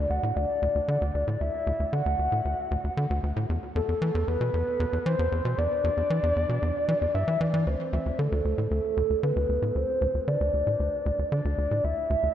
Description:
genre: ambient, sequencer-driven space music.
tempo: 115 BPM.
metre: 4/4.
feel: straight.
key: unclear.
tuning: A4 = 438 Hz.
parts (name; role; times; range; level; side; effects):
soft octave-layered synth lead; melody; 0.0-12.3 s; A4 to F#5; -27 LUFS; equal; chorus, phaser, tape echo.
tight sequencer bass; riff; 0.0-12.3 s; D2 to E3; -27 LUFS; equal; vintage 12-bit sampler grit, tape echo.
room: wet plate reverb, RT60 3.6 s.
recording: dreamy mix soaked in reverb.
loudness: -24 LUFS.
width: side -10 dB against mid.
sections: 0.0-7.7 A section; 7.7-12.3 B section.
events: none.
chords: 0.0 D; 3.5 E7(no3); 7.7 D7(no3).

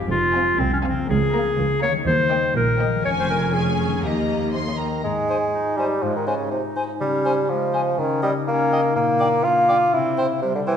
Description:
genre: cinematic, playful, whimsical film cue.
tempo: 122 BPM.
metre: 2/4.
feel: straight.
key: Ab major.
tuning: A4 = 440 Hz.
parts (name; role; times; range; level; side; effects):
warm studio violin section; melody; 0.0-5.0 s; G5 to C6; -34 LUFS; left 3 dB; none.
warm studio violin section; second line; 0.0-4.8 s; Eb5 to Ab5; -31 LUFS; left 2 dB; none.
warm studio viola section; accompaniment; 0.0-4.8 s; Bb3 to Db4; -31 LUFS; equal; none.
concert harp; arpeggios; 0.0-10.8 s; F2 to Eb5; -28 LUFS; left 8 dB; none.
clear clarinet; second line; 0.1-10.8 s; G3 to Db5; -24 LUFS; left 2 dB; none.
rich studio double bass section; bass; 0.1-4.8 s; F1 to Eb2; -26 LUFS; right 4 dB; none.
rich symphonic cello section; bass; 0.1-4.8 s; C2 to Bb2; -28 LUFS; right 3 dB; none.
clear bassoon; accompaniment; 4.5-10.8 s; C3 to F4; -20 LUFS; right 1 dB; none.
mellow silver concert flute; second line; 5.3-10.7 s; G5 to Ab5; -30 LUFS; left 2 dB; none.
warm cor anglais; second line; 5.3-10.8 s; C5 to Eb5; -30 LUFS; right 2 dB; none.
room: wet scoring stage reverb, RT60 1.8 s.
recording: minimal, uncompressed stereo recording.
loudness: -18 LUFS.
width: side -8 dB against mid.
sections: 0.0-5.0 A section; 5.0-10.8 B section.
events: none.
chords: 0.1 Fm; 1.1 Bbm7/Db; 2.1 Eb; 3.0 Db/F; 4.0 Eb; 5.0 Ab5; 7.0 Dbmaj7; 8.0 Eb7(no3)/Db; 9.0 Gm/Bb (rootless); 9.9 C.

